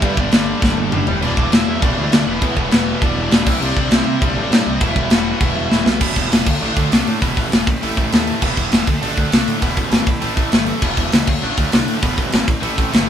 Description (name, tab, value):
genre	punk rock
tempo	200 BPM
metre	4/4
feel	straight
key	E minor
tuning	A4 = 441 Hz
part	smooth overdriven lead guitar	melody	0.0-5.9 s	B3 to F#5	-25 LUFS	equal	none
part	distorted electric guitar	riff	0.0-13.1 s	E2 to D4	-25 LUFS	right 8 dB	overdrive
part	high-gain distorted guitar	riff	0.0-13.1 s	G2 to E4	-26 LUFS	equal	distortion
part	tight distorted guitar	riff	0.0-13.1 s	E2 to D4	-26 LUFS	left 8 dB	distortion
part	fuzz picked electric bass	bass	0.0-13.1 s	E1 to C3	-23 LUFS	equal	overdrive
part	tight metal drum kit	drums	0.0-13.0 s	crash cymbal, hi-hat, kick drum, snare drum, toms	-16 LUFS	left 1 dB	none
room	light reverb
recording	band playing live in one room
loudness	-14 LUFS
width	side -9 dB against mid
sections	0.0-6.0 A section; 6.0-13.1 B section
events	drum fill 0.6-1.2, 5.7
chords	0.0 G; 1.1 Em; 3.5 C; 4.8 Em; 6.5 D; 7.2 Em; 7.7 Am; 8.4 Em; 8.9 D; 9.6 Em; 10.1 Am; 10.8 Em; 11.3 D; 12.0 Em; 12.5 Am